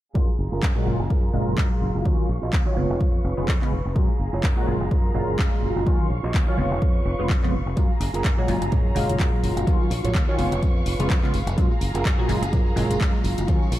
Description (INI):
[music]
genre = filtered disco house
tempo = 126 BPM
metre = 4/4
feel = swing 57% on 16ths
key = F# major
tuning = A4 = 443 Hz
[part]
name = funky polysynth comp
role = accompaniment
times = 0.1-13.7 s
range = A#2 to F#4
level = -27 LUFS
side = equal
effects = chorus, phaser, sidechain pumping, low-pass filter
[part]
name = warm studio violin section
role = sustained chords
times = 0.1-13.8 s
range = G#4 to C#6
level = -34 LUFS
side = equal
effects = sidechain pumping, low-pass filter
[part]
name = mellow electric guitar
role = riff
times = 0.1-13.7 s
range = E#4 to D#5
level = -32 LUFS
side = right 4 dB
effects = sidechain pumping, low-pass filter
[part]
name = fingered electric bass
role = bass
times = 0.2-13.8 s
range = E#1 to F#2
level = -27 LUFS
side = equal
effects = sidechain pumping, low-pass filter
[part]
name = electronic kick drum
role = drums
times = 0.2-13.6 s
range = none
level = -22 LUFS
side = equal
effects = none
[part]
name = house drum kit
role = drums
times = 0.6-13.8 s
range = handclaps, hi-hat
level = -32 LUFS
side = left 1 dB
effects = sidechain pumping on hats
[part]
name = tambourine and congas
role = percussion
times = 7.8-13.8 s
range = none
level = -34 LUFS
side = right 1 dB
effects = sidechain pumping on perc, low-pass filter on perc
[sound]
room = light reverb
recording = none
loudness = -20 LUFS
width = side -14 dB against mid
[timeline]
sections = 0.2-13.8 A section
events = filter sweep 0.2-13.8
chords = 0.2 F#maj9; 2.1 D#m9; 2.8 C#7/E#; 4.0 F#maj9; 5.9 D#m9; 6.6 C#7/E#; 7.8 F#maj9; 9.7 D#m9; 10.4 C#7/E#; 11.6 F#maj9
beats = | 0.15 0.63 1.10 1.58 | 2.06 2.53 3.01 3.48 | 3.96 4.44 4.91 5.39 | 5.87 6.34 6.82 7.29 | 7.77 8.25 8.72 9.20 | 9.68 10.15 10.63 11.10 | 11.58 12.06 12.53 13.01 | 13.48